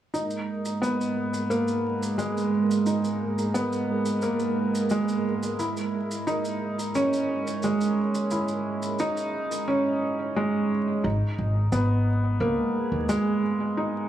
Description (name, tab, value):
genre	trip hop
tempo	88 BPM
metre	4/4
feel	straight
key	G# minor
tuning	A4 = 440 Hz
part	string machine, cellos	sustained chords	0.1-9.7 s	G#3 to A#4	-29 LUFS	right 4 dB	ensemble chorus
part	felt-muted upright piano	arpeggios	0.1-14.1 s	G#3 to E4	-25 LUFS	equal	low-pass filter, tape echo
part	maracas	percussion	0.1-13.2 s	none	-41 LUFS	right 2 dB	none
part	upright bass	bass	11.0-13.1 s	G#1 to D#2	-24 LUFS	equal	none
part	backwards swelling texture	texture	12.6-14.1 s	G#3	-36 LUFS	right 5 dB	none
room	light reverb, small room ambience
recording	vinyl crackle, small room reverb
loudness	-24 LUFS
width	side -11 dB against mid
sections	0.1-11.0 A section; 11.0-14.1 B section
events	none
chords	0.1 G#madd9; 5.6 C#madd9/G#; 11.0 G#madd9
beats	| 0.14 0.82 1.50 2.19 | 2.87 3.55 4.23 4.91 | 5.59 6.28 6.96 7.64 | 8.32 9.00 9.69 10.37 | 11.05 11.73 12.41 13.09 | 13.78